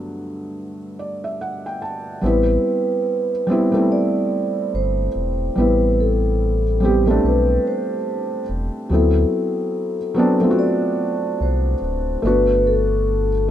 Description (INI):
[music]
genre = lo-fi hip hop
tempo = 72 BPM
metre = 4/4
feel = swing 61% on 16ths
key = A dorian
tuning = A4 = 440 Hz
[part]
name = felt-muted upright piano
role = accompaniment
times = 0.0-13.5 s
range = G2 to A5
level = -21 LUFS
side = right 1 dB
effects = none
[part]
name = sub bass with octave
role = bass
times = 2.2-13.5 s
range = D1 to D2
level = -20 LUFS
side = equal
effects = none
[part]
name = vibraphone with soft mallets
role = melody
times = 2.3-13.5 s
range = G4 to D5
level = -21 LUFS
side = moving between left 8 dB and right 6 dB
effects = auto-pan
[sound]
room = light reverb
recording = rough home demo mix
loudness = -17 LUFS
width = side -11 dB against mid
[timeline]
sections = 0.0-2.2 A section; 2.2-13.5 B section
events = felt piano fill 0.6-2.2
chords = 0.0 Gmaj9; 2.2 Am9; 8.9 D13; 12.2 Gmaj9